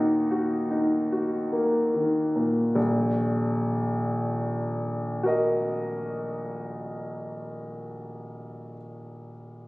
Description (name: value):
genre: classical, romantic nocturne for solo piano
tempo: 24 BPM (dotted quarters)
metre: 12/8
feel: rubato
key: Eb minor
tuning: A4 = 440 Hz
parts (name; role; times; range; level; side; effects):
- clear concert grand piano; solo; 0.0-9.7 s; Eb1 to Eb6; -25 LUFS; equal; none
room: moderate scoring stage reverb, RT60 1.6 s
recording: recorded on a phone in the room, club reverb, compression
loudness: -24 LUFS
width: side -20 dB against mid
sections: 0.0-2.8 A section; 2.8-9.7 B section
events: slowing down 0.0-2.8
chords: 0.0 Ebm